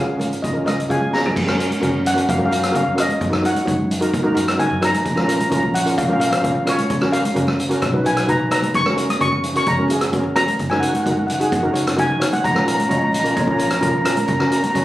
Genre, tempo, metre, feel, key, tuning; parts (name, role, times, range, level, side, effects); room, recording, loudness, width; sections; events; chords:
calypso; 130 BPM; 4/4; straight; F# major; A4 = 440 Hz
steel pan; melody; 0.0-14.8 s; C#5 to D#6; -21 LUFS; left 1 dB
steel pan; accompaniment; 0.0-14.8 s; C#4 to C#5; -21 LUFS; right 1 dB
upright bass; bass; 0.0-14.8 s; F#1 to F#2; -26 LUFS; equal
street-band drum kit; drums; 0.2-14.8 s; crash cymbal, hi-hat, kick drum, rim click, snare drum, toms; -23 LUFS; equal
congas; percussion; 0.2-14.7 s; -27 LUFS; equal
mellow hollow concert flute; second line; 12.9-14.7 s; A#4 to D#5; -28 LUFS; left 3 dB
moderate small room reverb, RT60 0.5 s; recorded on a phone in the room, club reverb, compression; -16 LUFS; side -15 dB against mid
0.0-1.4 A section; 1.4-14.8 B section
drum fill 1.1
0.0 C#; 1.4 F#; 3.2 D#m/F#; 5.1 A#m; 6.9 F#maj7; 7.8 B; 8.7 F#; 10.6 D#m7/F#; 12.4 A#m; 14.3 F#